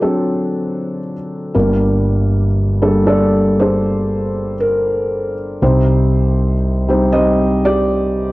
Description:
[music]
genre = acoustic folk-pop ballad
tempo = 59 BPM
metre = 4/4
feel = straight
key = G minor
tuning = A4 = 439 Hz
[part]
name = felt-muted upright piano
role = melody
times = 0.0-8.3 s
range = G1 to Eb5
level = -15 LUFS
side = equal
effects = cassette tape
[part]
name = mellow fretless electric bass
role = bass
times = 1.6-8.3 s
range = G1 to C2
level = -18 LUFS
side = equal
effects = none
[sound]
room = light reverb, studio ambience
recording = home recording on cassette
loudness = -13 LUFS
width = side -19 dB against mid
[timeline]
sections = 0.0-1.5 A section; 1.5-8.3 B section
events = none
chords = 0.0 D7; 1.5 Gmadd9; 5.6 Cm

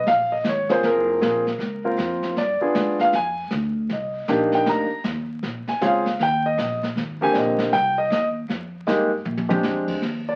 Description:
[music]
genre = jazz piano trio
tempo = 157 BPM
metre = 4/4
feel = swing 64% on 8ths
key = unclear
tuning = A4 = 440 Hz
[part]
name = warm grand piano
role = melody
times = 0.0-10.4 s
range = D3 to Bb5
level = -22 LUFS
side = equal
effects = none
[part]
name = upright bass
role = bass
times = 0.0-10.4 s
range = Gb1 to Bb2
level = -33 LUFS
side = equal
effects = none
[part]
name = jazz brush drum kit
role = drums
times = 0.1-10.4 s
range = brushed snare drum, crash cymbal, hi-hat, kick drum, snare drum, toms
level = -30 LUFS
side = equal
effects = none
[sound]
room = moderate studio reverb, RT60 0.6 s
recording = very old 78 rpm record, vinyl crackle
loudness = -22 LUFS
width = mono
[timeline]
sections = 0.0-10.0 A section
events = drum fill 9.3-9.6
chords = 0.0 Db; 0.8 Gbmaj9#11; 2.4 G7b9; 3.9 Cm9; 5.4 Bbm9; 6.2 Eb5; 7.0 Abmaj9#11; 8.5 Fm11; 9.3 Bb13

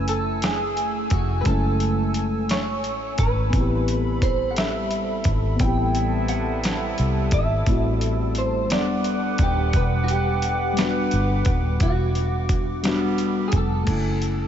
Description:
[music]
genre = slow six-eight R&B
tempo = 58 BPM (dotted quarters)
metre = 6/8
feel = straight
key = F# phrygian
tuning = A4 = 440 Hz
[part]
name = electric guitar at the edge of break-up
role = melody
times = 0.0-14.5 s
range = F#4 to G5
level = -27 LUFS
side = right 1 dB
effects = ensemble chorus
[part]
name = mellow FM electric piano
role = accompaniment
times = 0.0-14.5 s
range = G3 to G#5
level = -27 LUFS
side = left 4 dB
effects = chorus
[part]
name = hollow soft pad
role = sustained chords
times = 0.0-13.8 s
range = G3 to E6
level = -31 LUFS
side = right 2 dB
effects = chorus
[part]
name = vintage muted fingered electric bass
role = bass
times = 0.0-14.5 s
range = D#1 to C2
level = -24 LUFS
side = equal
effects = none
[part]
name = dusty soul sampler-style drum kit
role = drums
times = 0.1-14.4 s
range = crash cymbal, hi-hat, kick drum, snare drum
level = -25 LUFS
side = equal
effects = overdrive
[part]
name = warm horn section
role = stabs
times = 5.6-13.5 s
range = C3 to F#5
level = -32 LUFS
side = right 4 dB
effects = none
[sound]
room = moderate huge ambient reverb, RT60 4.7 s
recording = dreamy mix soaked in reverb, nothing above 7.7 kHz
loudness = -20 LUFS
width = side -9 dB against mid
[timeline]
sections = 0.0-13.9 A section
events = none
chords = 0.0 F#m9; 3.5 Am9; 8.7 Em9; 13.9 F#m9

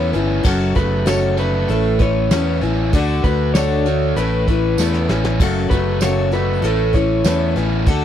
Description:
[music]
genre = folk rock and heartland rock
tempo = 97 BPM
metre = 4/4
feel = straight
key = A major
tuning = A4 = 441 Hz
[part]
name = electric guitar through a small old amp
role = melody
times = 0.0-7.5 s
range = A4 to C#5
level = -22 LUFS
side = equal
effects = none
[part]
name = picked steel-string acoustic guitar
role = accompaniment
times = 0.0-8.0 s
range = F#2 to B4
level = -22 LUFS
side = left 7 dB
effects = none
[part]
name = overdriven electric guitar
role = riff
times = 0.0-8.0 s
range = F#2 to C#4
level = -22 LUFS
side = right 2 dB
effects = none
[part]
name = fingered electric bass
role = bass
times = 0.0-8.0 s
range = F#1 to E2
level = -20 LUFS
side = right 1 dB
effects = none
[part]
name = soft brush drum kit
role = drums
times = 0.1-8.0 s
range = crash cymbal, hi-hat, kick drum, snare drum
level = -19 LUFS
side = equal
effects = none
[part]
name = tambourine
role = percussion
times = 1.1-7.4 s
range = none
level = -31 LUFS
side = right 23 dB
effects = none
[sound]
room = little or no reverb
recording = dry, close 1970s-style studio recording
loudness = -15 LUFS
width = side -10 dB against mid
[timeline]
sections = 0.0-8.0 A section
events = drum fill 4.8-5.4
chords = 0.4 F#m; 1.7 Aadd9; 2.9 D; 4.2 Aadd9; 5.4 F#m; 6.6 Aadd9

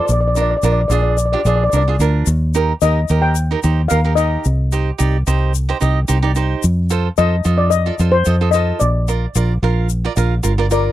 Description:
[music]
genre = calypso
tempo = 110 BPM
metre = 4/4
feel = swing 53% on 16ths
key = unclear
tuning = A4 = 442 Hz
[part]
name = steel pan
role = melody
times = 0.0-10.9 s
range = Bb4 to G5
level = -18 LUFS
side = left 4 dB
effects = none
[part]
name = cavaquinho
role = accompaniment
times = 0.0-10.9 s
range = D4 to F5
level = -21 LUFS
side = right 7 dB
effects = none
[part]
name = fingered electric bass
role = bass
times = 0.1-10.9 s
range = G1 to F2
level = -16 LUFS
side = equal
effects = none
[part]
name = egg shaker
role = percussion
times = 0.1-10.8 s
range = none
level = -28 LUFS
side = left 23 dB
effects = none
[sound]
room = little or no reverb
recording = dry, close 1970s-style studio recording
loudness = -14 LUFS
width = side -14 dB against mid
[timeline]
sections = 0.0-10.9 A section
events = none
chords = 0.1 Bb; 2.3 Eb; 4.5 Cm; 6.6 F7; 8.8 Bb

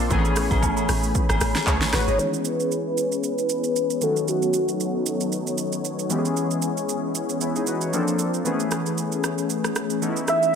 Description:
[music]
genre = amapiano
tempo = 115 BPM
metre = 4/4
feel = swing 55% on 16ths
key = unclear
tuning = A4 = 440 Hz
[part]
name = warm analog keys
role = accompaniment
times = 0.0-10.6 s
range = D#3 to C#5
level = -27 LUFS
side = left 2 dB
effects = chorus, low-pass filter
[part]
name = warm analog pad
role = sustained chords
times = 0.0-10.6 s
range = E3 to B#5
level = -27 LUFS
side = left 2 dB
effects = chorus, sidechain pumping, low-pass filter
[part]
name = deep log drum bass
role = bass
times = 0.0-2.2 s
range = G#1 to C#2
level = -25 LUFS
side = equal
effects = none
[part]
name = deep house drum kit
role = drums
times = 0.1-10.5 s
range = handclaps, hi-hat, kick drum, rim click, shaker, snare drum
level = -27 LUFS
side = right 2 dB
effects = overdrive
[part]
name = agogo bells and woodblock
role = percussion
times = 0.1-1.9 s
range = none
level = -30 LUFS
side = equal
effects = none
[part]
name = warm velvety synth lead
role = melody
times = 1.9-5.8, 10.3-10.6 s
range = F#4 to E5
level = -24 LUFS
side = right 1 dB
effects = chorus, low-pass filter, ping-pong delay
[sound]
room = light reverb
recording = none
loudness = -21 LUFS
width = side -7 dB against mid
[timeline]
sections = 0.0-2.2 A section; 2.2-10.6 B section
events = drop 0.0-2.2; filter sweep 2.2-10.6; kick muted 9.5-10.5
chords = 0.1 Amaj9; 2.2 C#m7; 4.0 B9; 6.1 E6; 7.9 A#maj9; 8.5 Amaj9

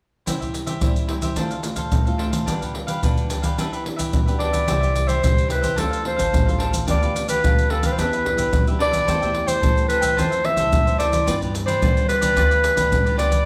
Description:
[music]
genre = samba and choro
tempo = 109 BPM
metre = 4/4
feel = straight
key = C major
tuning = A4 = 439 Hz
[part]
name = cavaquinho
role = accompaniment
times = 0.3-13.5 s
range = D4 to G5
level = -32 LUFS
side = equal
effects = none
[part]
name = nylon-string guitar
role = accompaniment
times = 0.3-13.4 s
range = F2 to A4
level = -32 LUFS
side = equal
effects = none
[part]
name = maracas, surdo and pandeiro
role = percussion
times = 0.3-13.5 s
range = none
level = -24 LUFS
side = equal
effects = none
[part]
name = clear clarinet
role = melody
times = 4.4-13.5 s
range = A4 to E5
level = -23 LUFS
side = equal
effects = none
[part]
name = upright bass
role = bass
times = 4.7-13.4 s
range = A1 to G3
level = -28 LUFS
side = equal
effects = none
[sound]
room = wet large studio reverb, RT60 1.0 s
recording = band playing live in one room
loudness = -20 LUFS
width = mono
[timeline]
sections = 0.3-4.7 A section; 4.7-13.5 B section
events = none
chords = 0.3 C; 1.4 Dm7; 2.5 G7/D; 3.6 Em7; 4.7 C; 5.8 Dm7; 6.9 G7/D; 8.0 Em7; 9.1 Am7/E; 10.2 Fmaj7; 11.3 G7

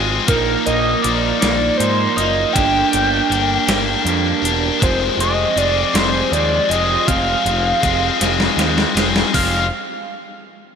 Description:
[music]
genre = indie rock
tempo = 53 BPM (dotted quarters)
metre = 6/8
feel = straight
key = F dorian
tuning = A4 = 440 Hz
[part]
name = cranked stack guitar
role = riff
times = 0.0-9.7 s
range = F3 to Ab4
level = -20 LUFS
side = left 8 dB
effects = overdrive, spring reverb
[part]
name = electric guitar through a small old amp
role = riff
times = 0.0-9.6 s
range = F2 to Eb4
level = -23 LUFS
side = right 8 dB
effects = wide subtle chorus, slapback echo
[part]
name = growling picked electric bass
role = bass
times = 0.0-9.7 s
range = E1 to Ab2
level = -23 LUFS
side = equal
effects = overdrive
[part]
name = overdriven synth lead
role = melody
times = 0.3-9.7 s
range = Bb4 to G5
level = -20 LUFS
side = equal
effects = distortion, chorus, slapback echo
[part]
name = clean 12-bit digital drum machine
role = drums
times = 0.3-9.5 s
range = hi-hat, kick drum, snare drum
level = -21 LUFS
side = left 1 dB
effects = overdrive
[sound]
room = moderate lush hall reverb, RT60 2.9 s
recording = big arena sound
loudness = -14 LUFS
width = side -7 dB against mid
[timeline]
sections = 0.3-9.3 A section; 9.3-10.8 B section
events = drum fill 8.2-9.3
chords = 0.3 Bbsus4; 2.6 Gm; 4.8 Fm

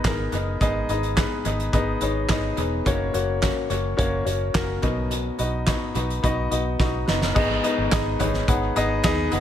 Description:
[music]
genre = piano-driven pop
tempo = 107 BPM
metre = 4/4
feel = straight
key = G# minor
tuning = A4 = 440 Hz
[part]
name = warm grand piano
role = accompaniment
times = 0.0-9.4 s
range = G#2 to F#5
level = -24 LUFS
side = left 2 dB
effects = analog delay
[part]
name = vintage muted fingered electric bass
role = bass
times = 0.0-9.4 s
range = E1 to D#2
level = -27 LUFS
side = equal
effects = none
[part]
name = loose indie drum kit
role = drums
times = 0.0-9.4 s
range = crash cymbal, handclaps, hi-hat, kick drum, snare drum, toms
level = -25 LUFS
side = right 1 dB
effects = analog delay
[sound]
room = light reverb, small room ambience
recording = echo-heavy mix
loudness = -21 LUFS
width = side -10 dB against mid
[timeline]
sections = 0.0-7.4 A section; 7.4-9.4 B section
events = drum fill 6.8-7.4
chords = 0.0 G#m; 2.9 F#; 4.8 B; 7.4 G#m

